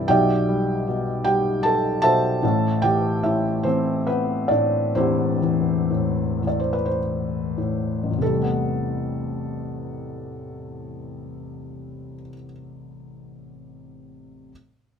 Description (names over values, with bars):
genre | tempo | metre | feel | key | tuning
classical, lyrical solo piano | 30-52 BPM (dotted quarters) | 6/8 | rubato | A minor | A4 = 440 Hz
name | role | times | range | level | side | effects
felt-muted upright piano | solo | 0.0-14.5 s | E1 to A5 | -21 LUFS | left 1 dB | none
room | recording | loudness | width
moderate studio reverb, RT60 0.9 s | none | -20 LUFS | side -7 dB against mid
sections
0.0-8.2 A section; 8.2-12.0 B section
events
slowing down 2.4-8.2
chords
0.1 Em7/B; 2.4 Am9